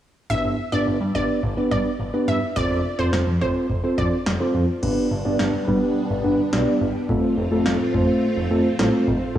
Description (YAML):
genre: synth-pop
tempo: 106 BPM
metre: 4/4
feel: straight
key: G major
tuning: A4 = 440 Hz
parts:
  - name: wide unison pluck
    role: second line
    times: 0.3-4.1 s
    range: C5 to E5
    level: -28 LUFS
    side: equal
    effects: analog delay, shimmer reverb
  - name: mellow tine electric piano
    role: accompaniment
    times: 0.3-9.4 s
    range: A3 to D5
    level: -22 LUFS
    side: equal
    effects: low-pass filter, shimmer reverb
  - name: fat analog bass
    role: bass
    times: 0.3-9.4 s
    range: F1 to G2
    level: -25 LUFS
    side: equal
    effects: none
  - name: electro analog drum machine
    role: drums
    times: 0.3-9.4 s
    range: crash cymbal, kick drum, snare drum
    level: -28 LUFS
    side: equal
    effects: none
  - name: string machine, full ensemble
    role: sustained chords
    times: 4.8-9.4 s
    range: G3 to F4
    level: -26 LUFS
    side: right 1 dB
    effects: ensemble chorus, shimmer reverb
room: moderate lush hall reverb, RT60 1.9 s, digital ambience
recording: dry, gritty hardware recording, transformer saturation, small room ambience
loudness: -19 LUFS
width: side -11 dB against mid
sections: 0.3-4.8 A section; 4.8-9.4 B section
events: filter sweep on tine electric piano 0.3-4.8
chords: 0.3 G; 2.6 F; 4.8 G; 7.1 F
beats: | 0.30 0.87 1.43 2.00 | 2.56 3.13 3.70 4.26 | 4.83 5.39 5.96 6.53 | 7.09 7.66 8.22 8.79 | 9.36